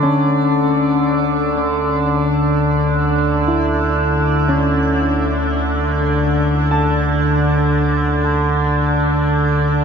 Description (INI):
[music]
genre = ambient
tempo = free time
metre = none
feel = none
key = unclear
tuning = A4 = 440 Hz
[part]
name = concert harp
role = arpeggios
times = 0.0-9.8 s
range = A3 to A5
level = -22 LUFS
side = left 1 dB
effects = ping-pong delay
[part]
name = warm sub bass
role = bass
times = 0.0-9.8 s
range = D2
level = -23 LUFS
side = right 1 dB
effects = none
[part]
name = overtone-sweeping drone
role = drone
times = 0.0-9.8 s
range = D3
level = -16 LUFS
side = equal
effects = chorus, built-in reverb
[sound]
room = wet shimmer reverb, RT60 8.1 s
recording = none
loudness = -14 LUFS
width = side -6 dB against mid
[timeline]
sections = 0.0-9.8 A section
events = fade-out on sub bass 0.0-9.8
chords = 0.0 A/D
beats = free time